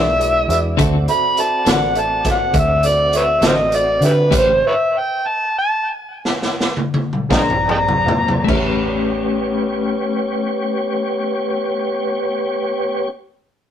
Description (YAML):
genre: slow blues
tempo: 48-68 BPM (dotted quarters)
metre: 12/8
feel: straight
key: A mixolydian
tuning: A4 = 438 Hz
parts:
  - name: overdriven harmonica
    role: melody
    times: 0.0-8.5 s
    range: E4 to B5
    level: -16 LUFS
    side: equal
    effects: digital delay
  - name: clean electric guitar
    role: accompaniment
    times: 0.0-13.2 s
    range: D3 to C5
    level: -22 LUFS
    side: left 4 dB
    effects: tremolo
  - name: warm upright piano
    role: accompaniment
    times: 0.0-13.1 s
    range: F#4 to Ab5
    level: -25 LUFS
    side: right 3 dB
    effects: none
  - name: tonewheel organ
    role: sustained chords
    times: 0.0-13.1 s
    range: G#3 to D5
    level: -23 LUFS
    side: equal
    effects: slow rotary speaker, chorus vibrato
  - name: vintage muted fingered electric bass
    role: bass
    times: 0.0-13.1 s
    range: A1 to D3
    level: -22 LUFS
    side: equal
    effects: none
  - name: raw garage drum kit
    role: drums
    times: 0.2-8.7 s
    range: crash cymbal, hi-hat, kick drum, snare drum, toms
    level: -20 LUFS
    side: equal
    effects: none
room: moderate studio reverb, RT60 0.6 s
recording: rough rehearsal-room recording, tube saturation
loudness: -15 LUFS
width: side -9 dB against mid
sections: 0.0-8.5 A section; 8.5-13.5 B section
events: harmonica solo 0.0-8.5; slowing down 3.1-8.5; stop 4.3-7.3; drum fill 6.2-8.5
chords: 0.0 E7; 0.8 D7; 4.3 A9; 7.3 Bb9; 8.5 A9